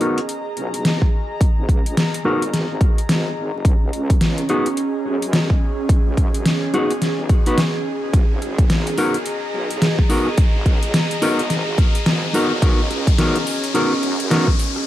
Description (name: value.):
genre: glitch hop.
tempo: 107 BPM.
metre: 4/4.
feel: swing 61% on 16ths.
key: G# minor.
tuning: A4 = 436 Hz.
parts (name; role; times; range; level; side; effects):
semi-hollow electric guitar; stabs; 0.0-14.5 s; B3 to B4; -22 LUFS; left 1 dB; vintage 12-bit sampler grit, sidechain pumping, low-pass filter, tape echo.
dubstep drum kit; drums; 0.0-14.8 s; hi-hat, rim click, snare drum; -21 LUFS; equal; overdrive.
riser; sound effects; 3.0-14.9 s; none; -30 LUFS; left 2 dB; none.
airy breathy pad; texture; 0.0-14.9 s; C#4 to A#5; -25 LUFS; right 1 dB; chorus, sidechain pumping.
wobble bass; bass; 0.6-14.5 s; F#1 to F#2; -28 LUFS; equal; chorus, overdrive, high-pass filter.
electronic kick drum; drums; 1.0-14.6 s; none; -16 LUFS; equal; overdrive.
room: light reverb.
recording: vinyl crackle.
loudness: -16 LUFS.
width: side -13 dB against mid.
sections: 0.0-14.9 A section.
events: build-up 0.0-14.9; filter sweep on clean electric guitar 0.0-14.9; riser 3.0-14.9.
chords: 0.0 G#m7; 3.7 C#7sus4; 8.1 G#m7; 12.6 C#7sus4.